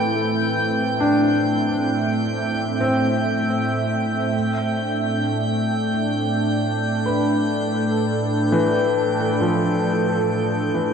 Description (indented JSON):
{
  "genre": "ambient",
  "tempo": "free time",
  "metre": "none",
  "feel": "none",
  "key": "unclear",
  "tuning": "A4 = 440 Hz",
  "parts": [
    { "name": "warm analog pad", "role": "sustained chords", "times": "0.0-10.9 s", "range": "A2 to E5", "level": "-21 LUFS", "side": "right 1 dB", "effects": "chorus" },
    { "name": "felt-muted upright piano", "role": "arpeggios", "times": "0.0-10.9 s", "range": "E3 to G5", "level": "-24 LUFS", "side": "left 2 dB", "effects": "ping-pong delay" },
    { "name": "drifting glass-harmonics texture", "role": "texture", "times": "0.0-10.9 s", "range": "G5 to G6", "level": "-26 LUFS", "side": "right 2 dB", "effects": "chorus, built-in reverb" }
  ],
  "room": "wet concert hall reverb, RT60 2.2 s",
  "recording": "none",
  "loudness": "-18 LUFS",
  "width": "side -6 dB against mid",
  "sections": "0.0-10.9 A section",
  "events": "fade-out on synth texture 0.0-10.9; fade-out 9.2-10.9",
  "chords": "0.0 Am; 4.3 Dm/A"
}